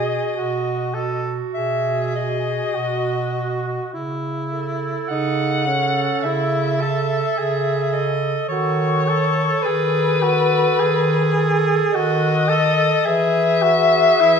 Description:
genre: classical, lyrical piece for single-reed quartet.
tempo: 52 BPM.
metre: 4/4.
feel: rubato.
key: unclear.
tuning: A4 = 440 Hz.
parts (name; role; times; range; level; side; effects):
warm soprano saxophone; melody; 0.0-14.4 s; B4 to F#5; -20 LUFS; left 4 dB; none.
clear clarinet; second line; 0.0-14.4 s; F#4 to A4; -25 LUFS; right 13 dB; none.
warm tenor saxophone; accompaniment; 0.0-14.4 s; C#4 to A4; -23 LUFS; equal; none.
mellow bass clarinet; bass; 0.0-14.4 s; B2 to E3; -24 LUFS; right 2 dB; none.
room: wet recital hall reverb, RT60 1.6 s.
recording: minimal, uncompressed stereo recording.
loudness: -17 LUFS.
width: side -6 dB against mid.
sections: 0.0-14.4 A section.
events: none.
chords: 0.0 B; 3.9 A/C#; 8.5 B7/D#; 13.1 E.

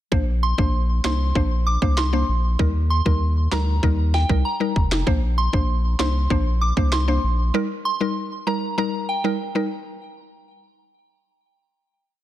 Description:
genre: dancehall.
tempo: 97 BPM.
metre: 4/4.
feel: straight.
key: Eb major.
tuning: A4 = 444 Hz.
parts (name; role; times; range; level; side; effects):
mallet-like synth pluck; accompaniment; 0.1-9.7 s; G3 to C5; -26 LUFS; left 1 dB; chorus.
saturated sub bass; bass; 0.1-7.5 s; F1 to Eb2; -21 LUFS; equal; none.
island pop drum kit; drums; 0.1-7.1 s; handclaps, kick drum, snare drum; -23 LUFS; equal; overdrive, vintage 12-bit sampler grit.
soft synth bell; melody; 0.4-9.2 s; G5 to D6; -27 LUFS; right 1 dB; chorus, digital delay.
room: little or no reverb.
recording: dense, heavily limited modern master.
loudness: -19 LUFS.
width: side -13 dB against mid.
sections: 0.1-10.0 verse.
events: none.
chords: 0.1 Bbadd9; 2.6 Eb; 5.1 Bbadd9; 7.5 Eb.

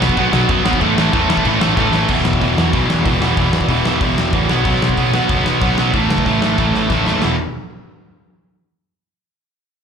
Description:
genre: punk rock.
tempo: 187 BPM.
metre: 4/4.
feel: straight.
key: unclear.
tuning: A4 = 439 Hz.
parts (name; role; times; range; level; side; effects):
cranked stack guitar; riff; 0.0-7.3 s; E2 to B3; -19 LUFS; left 12 dB; overdrive, slapback echo.
crunchy overdriven guitar; riff; 0.0-7.3 s; E2 to B3; -18 LUFS; right 11 dB; slapback echo.
fuzz picked electric bass; bass; 0.0-7.4 s; E1 to B2; -20 LUFS; equal; overdrive.
big rock drum kit; drums; 0.0-7.3 s; china cymbal, crash cymbal, hi-hat, kick drum, snare drum; -20 LUFS; left 1 dB; none.
room: little or no reverb.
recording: live gig heard through the venue's PA, club reverb.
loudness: -13 LUFS.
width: side -7 dB against mid.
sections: 0.0-2.1 A section; 2.1-7.2 B section; 7.2-8.5 C section.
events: drum fill 1.8-2.1, 6.6-7.2.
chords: 0.0 B5; 0.8 A5; 2.1 E5; 4.5 B5; 5.9 A5; 7.2 E5.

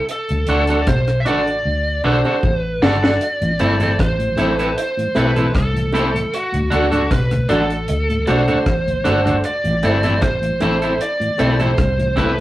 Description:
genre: roots reggae.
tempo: 77 BPM.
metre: 4/4.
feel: straight.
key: A dorian.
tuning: A4 = 442 Hz.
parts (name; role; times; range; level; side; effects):
biting lead guitar; melody; 0.0-12.4 s; F#4 to E5; -21 LUFS; right 1 dB; overdrive.
deep reggae drum kit; drums; 0.1-12.4 s; hi-hat, kick drum, rim click, snare drum; -21 LUFS; equal; none.
vintage muted fingered electric bass; bass; 0.3-12.4 s; G1 to D2; -20 LUFS; equal; none.
electric guitar at the edge of break-up; accompaniment; 0.5-12.3 s; C4 to A4; -19 LUFS; right 1 dB; none.
bongos; percussion; 0.7-12.4 s; none; -30 LUFS; right 1 dB; none.
mellow tonewheel organ; accompaniment; 3.4-12.4 s; D2 to F#4; -24 LUFS; left 1 dB; chorus vibrato, slow rotary speaker.
room: wet studio reverb, RT60 0.6 s.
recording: rough rehearsal-room recording.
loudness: -15 LUFS.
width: side -15 dB against mid.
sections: 0.0-12.4 A section.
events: drum fill 1.6-3.2.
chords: 0.1 D; 3.2 Am; 6.3 D; 9.4 Am.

